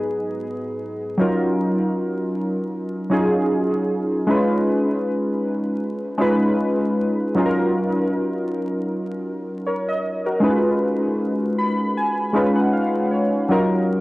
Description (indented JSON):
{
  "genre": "hip hop",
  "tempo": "78 BPM",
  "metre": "4/4",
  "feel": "swing 56% on 16ths",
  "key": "unclear",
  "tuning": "A4 = 445 Hz",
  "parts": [
    { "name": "warbly lo-fi synth keys", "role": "solo", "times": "0.0-14.0 s", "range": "G#2 to B5", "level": "-19 LUFS", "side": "equal", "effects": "chorus, low-pass filter, tape echo" }
  ],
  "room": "wet small room reverb, RT60 0.5 s",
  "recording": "home recording on cassette, vinyl crackle",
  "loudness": "-19 LUFS",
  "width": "side -19 dB against mid",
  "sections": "0.0-1.2 A section; 1.2-14.0 B section",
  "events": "synth keys solo 0.0-1.2; synth keys fill 11.2-13.5",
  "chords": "0.0 G#m7; 1.2 D#m7; 4.3 C#7; 7.3 D#m7; 10.4 C#7; 13.5 D#m7"
}